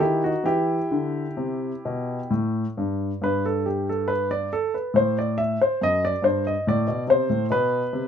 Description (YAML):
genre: classical, baroque-style suite movement for grand piano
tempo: 64-72 BPM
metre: 3/4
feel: rubato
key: E minor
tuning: A4 = 441 Hz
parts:
  - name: clear grand piano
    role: solo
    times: 0.0-8.1 s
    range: F#2 to E5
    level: -21 LUFS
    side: left 1 dB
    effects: none
room: light reverb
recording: nothing above 10.8 kHz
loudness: -21 LUFS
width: side -8 dB against mid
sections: 0.0-3.2 A section; 3.2-8.1 A section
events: none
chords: 0.4 Em; 3.2 N.C.; 5.8 F#dim; 7.5 N.C.